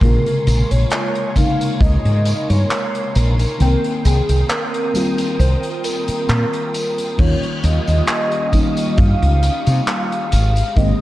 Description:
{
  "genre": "vaporwave",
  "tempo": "67 BPM",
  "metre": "4/4",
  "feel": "swing 53% on 16ths",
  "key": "unclear",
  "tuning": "A4 = 440 Hz",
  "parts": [
    { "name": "warm velvety synth lead", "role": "melody", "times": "0.0-11.0 s", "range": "Ab4 to F5", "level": "-23 LUFS", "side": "equal", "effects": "chorus, cassette tape, tape echo" },
    { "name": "FM electric piano with soft pad layer", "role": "accompaniment", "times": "0.0-11.0 s", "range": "C3 to G5", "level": "-22 LUFS", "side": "left 1 dB", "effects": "lush chorus" },
    { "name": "soft string machine", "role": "sustained chords", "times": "0.0-11.0 s", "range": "Ab3 to Eb6", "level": "-31 LUFS", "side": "equal", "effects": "ensemble chorus, vintage 12-bit sampler grit" },
    { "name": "woody fretless electric bass", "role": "bass", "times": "0.0-10.9 s", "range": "Ab1 to C3", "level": "-15 LUFS", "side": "equal", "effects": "none" },
    { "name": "gated 80s drum kit", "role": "drums", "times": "0.0-11.0 s", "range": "crash cymbal, handclaps, hi-hat, tambourine", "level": "-25 LUFS", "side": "equal", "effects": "gated reverb" },
    { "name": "kick drum", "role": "drums", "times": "0.0-11.0 s", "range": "none", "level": "-16 LUFS", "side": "equal", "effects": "none" }
  ],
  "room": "light reverb",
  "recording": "cassette tape, lossy compression artefacts",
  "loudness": "-15 LUFS",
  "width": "side -16 dB against mid",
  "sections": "0.0-7.2 A section; 7.2-11.0 B section",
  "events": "kick drops out 3.6-7.2",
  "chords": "0.0 Bbm9; 3.6 Cm7; 7.2 Eb9; 10.3 Abmaj9"
}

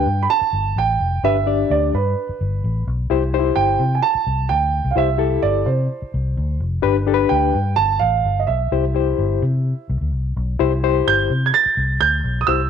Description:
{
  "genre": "uptempo 1960s-style soul",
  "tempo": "128 BPM",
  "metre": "4/4",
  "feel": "straight",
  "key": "C major",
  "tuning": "A4 = 441 Hz",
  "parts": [
    { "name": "dark concert grand piano", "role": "melody", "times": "0.0-12.7 s", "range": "B4 to A6", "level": "-19 LUFS", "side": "right 8 dB", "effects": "none" },
    { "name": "barky reed electric piano", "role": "accompaniment", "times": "0.0-12.6 s", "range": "D4 to D5", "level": "-20 LUFS", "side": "left 10 dB", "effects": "overdrive, fast tremolo" },
    { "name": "vintage muted fingered electric bass", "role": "bass", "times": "0.0-12.7 s", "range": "F1 to C3", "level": "-20 LUFS", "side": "left 1 dB", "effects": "none" }
  ],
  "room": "moderate spring reverb, RT60 1.4 s, studio ambience",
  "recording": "1960s-style stereo with parts hard left and right",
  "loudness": "-16 LUFS",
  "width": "side -7 dB against mid",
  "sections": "0.0-10.6 A section; 10.6-12.7 A section",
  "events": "none",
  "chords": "0.0 G; 3.1 C; 6.8 G; 8.7 C"
}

